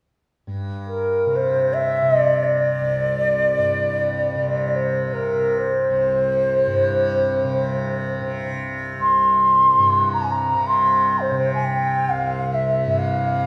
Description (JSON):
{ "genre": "indian classical, Hindustani", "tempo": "free time", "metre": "none", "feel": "none", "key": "unclear", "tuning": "A4 = 443 Hz", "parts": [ { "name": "tanpura", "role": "drone", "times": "0.5-13.5 s", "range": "C2 to C3", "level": "-28 LUFS", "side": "equal", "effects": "none" }, { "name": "mellow hollow bansuri", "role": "melody", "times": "0.9-13.5 s", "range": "Bb4 to C6", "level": "-20 LUFS", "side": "equal", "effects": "none" } ], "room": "wet recital hall reverb, RT60 1.3 s", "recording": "recorded in a church or concert hall", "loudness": "-20 LUFS", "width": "mono", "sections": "0.5-13.5 A section", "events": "none", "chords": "none" }